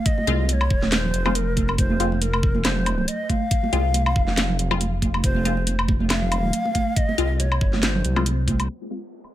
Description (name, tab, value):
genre	deep dubstep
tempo	139 BPM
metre	4/4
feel	swing 55% on 16ths, half-time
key	F minor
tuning	A4 = 438 Hz
part	breathy bright low ney	melody	0.0-8.3 s	Bb4 to F5	-28 LUFS	left 1 dB	dub echo
part	electronic kick drum	drums	0.1-8.6 s	none	-22 LUFS	equal	none
part	garage drum kit	drums	0.1-9.3 s	handclaps, hi-hat, snare drum, woodblock	-25 LUFS	left 1 dB	none
part	congas	percussion	0.2-8.7 s	none	-27 LUFS	right 4 dB	none
part	filtered dub chord stab	stabs	0.3-9.0 s	Ab3 to F4	-29 LUFS	left 5 dB	phaser, dub echo
part	dark detuned saw bass	bass	0.3-8.7 s	Eb1 to C2	-23 LUFS	equal	none
part	downlifter	sound effects	8.7-9.3 s	none	-50 LUFS	equal	none
room	light reverb, digital ambience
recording	low-pass filter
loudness	-19 LUFS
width	side -13 dB against mid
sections	0.0-8.7 A section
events	drop 0.0-8.7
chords	0.0 Fm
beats	| 0.06 0.49 0.92 1.35 | 1.78 2.22 2.65 3.08 | 3.51 3.94 4.38 4.81 | 5.24 5.67 6.10 6.53 | 6.96 7.40 7.83 8.26 | 8.69 9.12